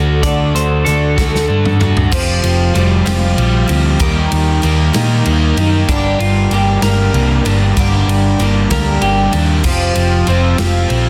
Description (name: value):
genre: folk rock and heartland rock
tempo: 64 BPM (dotted quarters)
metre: 6/8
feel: straight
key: G minor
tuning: A4 = 441 Hz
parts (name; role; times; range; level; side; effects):
- picked twelve-string acoustic guitar; accompaniment; 0.0-11.1 s; G2 to A4; -21 LUFS; equal; none
- overdriven semi-hollow guitar; riff; 0.0-11.1 s; G2 to F#4; -21 LUFS; equal; none
- hollow-body short-scale picked electric bass; bass; 0.0-11.1 s; F1 to Bb2; -17 LUFS; equal; none
- electric guitar through a small old amp; second line; 0.2-1.8, 5.9-9.3 s; D4 to D5; -23 LUFS; equal; none
- natural country drum kit; drums; 0.2-11.0 s; crash cymbal, hi-hat, kick drum, ride cymbal, snare drum, toms; -22 LUFS; equal; none
room: light reverb, studio reverb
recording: dense, heavily limited modern master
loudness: -13 LUFS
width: mono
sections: 0.0-2.1 A section; 2.1-11.1 B section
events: drum fill 1.2-2.1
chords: 0.0 D; 2.1 Fsus2; 4.0 Eb; 5.9 Gm; 9.6 Fsus2